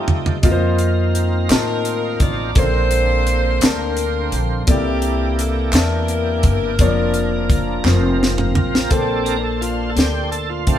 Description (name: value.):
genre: slow gospel.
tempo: 57 BPM (dotted quarters).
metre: 6/8.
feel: straight.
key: Bb major.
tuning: A4 = 442 Hz.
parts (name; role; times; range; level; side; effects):
warm saxophone section; melody; 0.0-8.2 s; Bb3 to D5; -23 LUFS; equal; none.
dark concert grand piano; accompaniment; 0.0-10.8 s; Bb2 to A5; -22 LUFS; left 3 dB; none.
bright tonewheel organ; sustained chords; 0.0-10.8 s; D3 to C5; -26 LUFS; right 3 dB; overdrive, chorus vibrato, slow rotary speaker.
tight funk drum kit; drums; 0.1-10.8 s; hi-hat, kick drum, snare drum, toms; -17 LUFS; equal; none.
upright bass; bass; 0.4-10.8 s; F1 to A2; -20 LUFS; equal; none.
group handclap; percussion; 1.5-8.2 s; none; -28 LUFS; right 2 dB; none.
muted studio string section; sustained chords; 8.9-10.8 s; D5 to C6; -32 LUFS; right 2 dB; none.
room: light reverb.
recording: band playing live in one room.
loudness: -15 LUFS.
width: side -10 dB against mid.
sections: 0.0-8.9 A section; 8.9-10.8 B section.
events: drum fill 0.0-0.4, 7.8-8.9; tonewheel organ solo 8.9-10.8.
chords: 0.4 F7sus4; 2.6 Bbmaj9; 4.7 C13; 6.8 Bb/F; 7.8 Fsus4; 8.9 Bbmaj9.